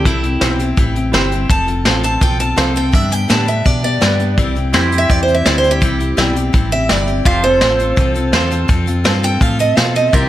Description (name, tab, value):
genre	honky-tonk and classic country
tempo	167 BPM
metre	4/4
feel	straight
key	C major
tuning	A4 = 440 Hz
part	picked steel-string acoustic guitar	melody	0.0-10.3 s	E4 to A5	-17 LUFS	right 2 dB	none
part	picked steel-string acoustic guitar	accompaniment	0.0-10.3 s	G2 to A4	-20 LUFS	left 4 dB	none
part	fingered electric bass	bass	0.0-10.3 s	F1 to C3	-18 LUFS	equal	none
part	vintage brush drum kit	drums	0.1-10.2 s	hi-hat, kick drum, snare drum	-16 LUFS	equal	none
part	clear upright piano	accompaniment	0.4-10.1 s	D4 to D5	-25 LUFS	right 5 dB	none
part	pedal steel guitar	sustained chords	4.7-10.3 s	E4 to C5	-24 LUFS	right 2 dB	none
room	light reverb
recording	none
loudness	-12 LUFS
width	side -13 dB against mid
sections	0.0-10.3 A section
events	steel-string acoustic guitar solo 0.0-10.3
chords	0.0 C; 1.5 F; 2.9 G; 4.4 C; 7.3 F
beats	| 0.06 0.41 0.78 1.14 | 1.50 1.86 2.22 2.58 | 2.94 3.30 3.66 4.02 | 4.38 4.74 5.10 5.46 | 5.82 6.18 6.54 6.90 | 7.26 7.62 7.98 8.34 | 8.70 9.06 9.42 9.78 | 10.13